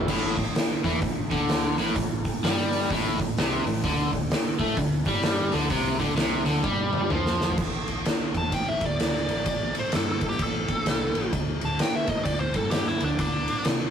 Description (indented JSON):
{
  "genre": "blues rock power trio and southern rock",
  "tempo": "128 BPM",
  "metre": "4/4",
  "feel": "swing 62% on 8ths",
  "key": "A minor",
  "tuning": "A4 = 441 Hz",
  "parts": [
    { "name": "crunchy overdriven guitar", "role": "riff", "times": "0.0-7.6 s", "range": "A2 to A3", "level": "-26 LUFS", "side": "equal", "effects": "none" },
    { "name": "vintage muted fingered electric bass", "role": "bass", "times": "0.0-13.9 s", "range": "A1 to C3", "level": "-32 LUFS", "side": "equal", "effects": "none" },
    { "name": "oversized low-tuned drum kit", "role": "drums", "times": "0.1-13.8 s", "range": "crash cymbal, hi-hat, kick drum, ride cymbal, snare drum, toms", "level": "-26 LUFS", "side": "equal", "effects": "none" },
    { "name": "nasal lead guitar with a parked wah", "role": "melody", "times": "8.4-13.7 s", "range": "D4 to A5", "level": "-29 LUFS", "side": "equal", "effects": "overdrive" }
  ],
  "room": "moderate stone room reverb, RT60 1.1 s",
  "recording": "rough rehearsal-room recording, warm saturation, vinyl crackle",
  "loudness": "-23 LUFS",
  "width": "side -8 dB against mid",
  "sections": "0.1-7.6 A section; 7.6-13.9 B section",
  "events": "drum fill 6.6-7.6; lead electric guitar solo 7.6-13.9",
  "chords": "0.1 Am; 3.8 D5; 7.6 N.C.; 11.3 D5"
}